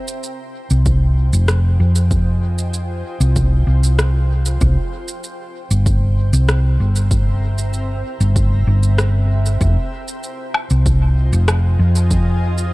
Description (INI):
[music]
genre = ambient dub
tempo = 96 BPM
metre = 4/4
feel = straight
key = F minor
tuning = A4 = 440 Hz
[part]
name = granular cloud pad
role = sustained chords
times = 0.0-12.7 s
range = C4 to Bb5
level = -30 LUFS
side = equal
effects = built-in reverb
[part]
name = electronic shaker, rim click and woodblock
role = drums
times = 0.1-12.7 s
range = none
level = -24 LUFS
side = equal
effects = overdrive, dub echo
[part]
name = hollow-body short-scale fingered electric bass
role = bass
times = 0.7-12.7 s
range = F1 to F2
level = -14 LUFS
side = equal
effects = none
[part]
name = electronic kick drum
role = drums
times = 0.9-12.2 s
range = none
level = -19 LUFS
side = equal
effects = overdrive
[sound]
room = little or no reverb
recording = none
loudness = -14 LUFS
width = side -21 dB against mid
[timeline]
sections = 0.0-12.7 A section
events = fade-in on ambient pad 0.0-12.7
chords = 0.0 Fm7; 4.6 C7; 9.6 Fm7